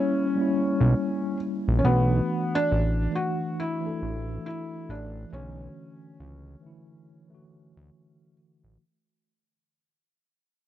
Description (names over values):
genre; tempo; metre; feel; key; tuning
lo-fi hip hop; 69 BPM; 4/4; swing 61% on 16ths; B minor; A4 = 439 Hz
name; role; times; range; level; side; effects
felt-muted upright piano; melody; 0.0-8.3 s; B3 to F#4; -29 LUFS; equal; none
mellow tine electric piano; accompaniment; 0.0-8.8 s; D3 to A4; -29 LUFS; equal; medium stereo tremolo
fat analog bass; bass; 0.8-8.8 s; A1 to D2; -24 LUFS; equal; none
room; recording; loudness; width
light reverb, small room ambience; cassette tape; -23 LUFS; side -12 dB against mid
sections
0.0-8.8 A section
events
fade-out 0.0-8.8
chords
0.0 F#7b9 (rootless); 1.8 Bm9